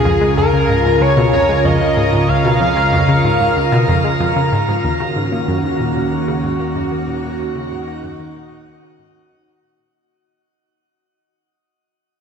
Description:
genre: ambient, sequencer-driven space music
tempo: 94 BPM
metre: 4/4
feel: straight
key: Eb minor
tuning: A4 = 440 Hz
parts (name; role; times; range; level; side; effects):
- pulse-width lead; melody; 0.0-4.2 s; Ab4 to F5; -18 LUFS; left 1 dB; chorus, ping-pong delay
- evolving wavetable pad; sustained chords; 0.0-9.9 s; Db2 to Bb4; -17 LUFS; equal; chorus, built-in reverb
- bubbling stepped-filter texture; texture; 0.0-10.0 s; Gb4 to Bb5; -28 LUFS; right 2 dB; chorus, built-in reverb
- analog pluck; riff; 0.1-9.9 s; Db2 to Bb3; -19 LUFS; equal; chorus, ping-pong delay
- analog drone; bass; 5.7-9.9 s; Eb2; -32 LUFS; equal; chorus
room: wet shimmer reverb, RT60 7.8 s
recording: none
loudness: -13 LUFS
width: side -6 dB against mid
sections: 0.0-4.8 A section; 4.8-9.9 B section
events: fade-out on synth arpeggio sound 4.8-9.9; fade-out on synth drone 4.8-9.9; fade-out 4.8-9.9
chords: 0.0 Db; 4.8 Ebm7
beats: 0.37 1.01 1.65 | 2.29 2.93 3.57 4.20 | 4.84 5.48 6.12 6.76 | 7.39 8.03 8.67 9.31

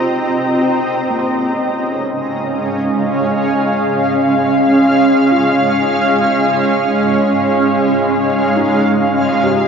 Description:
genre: ambient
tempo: 69 BPM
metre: 3/4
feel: straight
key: Db lydian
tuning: A4 = 437 Hz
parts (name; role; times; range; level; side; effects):
- granular cloud pad; sustained chords; 0.0-9.7 s; Ab3 to Bb5; -12 LUFS; right 1 dB; built-in reverb
- felt-muted upright piano; arpeggios; 0.0-9.7 s; Bb3 to C6; -25 LUFS; left 1 dB; diffuse ambient delay
- overtone-sweeping drone; drone; 0.2-0.8 s; none; barely audible; none; none
room: wet huge ambient reverb, RT60 8.1 s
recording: worn, warbling old tape, cassette tape, warbly pitch drift, nothing above 7.6 kHz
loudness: -12 LUFS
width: side -6 dB against mid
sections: 0.7-9.7 A section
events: fade-in on felt piano 0.7-9.7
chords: 0.0 Cm7; 0.7 Dbmaj7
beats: | 0.67 1.55 2.44 | 3.33 4.21 5.08 | 5.95 6.82 7.68 | 8.55 9.43

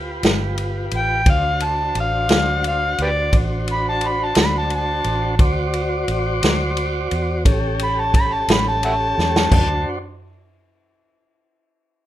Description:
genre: slow blues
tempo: 58 BPM (dotted quarters)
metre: 12/8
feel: straight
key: D mixolydian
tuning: A4 = 441 Hz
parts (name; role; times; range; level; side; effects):
- tonewheel organ; sustained chords; 0.0-10.0 s; C#4 to D5; -25 LUFS; equal; slow rotary speaker, plate reverb
- vintage muted fingered electric bass; bass; 0.0-9.8 s; G1 to E2; -24 LUFS; equal; none
- vintage drum kit; drums; 0.2-9.7 s; crash cymbal, kick drum, ride cymbal, snare drum, toms; -18 LUFS; equal; none
- overdriven harmonica; melody; 1.0-9.8 s; G4 to B5; -20 LUFS; equal; plate reverb
room: moderate small room reverb, RT60 0.5 s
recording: rough home demo mix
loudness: -17 LUFS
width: side -13 dB against mid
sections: 0.0-9.5 A section; 9.5-12.1 B section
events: harmonica solo 0.0-9.5; drum fill 9.2-9.5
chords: 0.0 G7; 1.3 D7; 7.5 A7; 9.5 D7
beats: 0.23 | 1.26 2.29 3.33 4.36 | 5.39 6.42 7.45 8.48 | 9.52

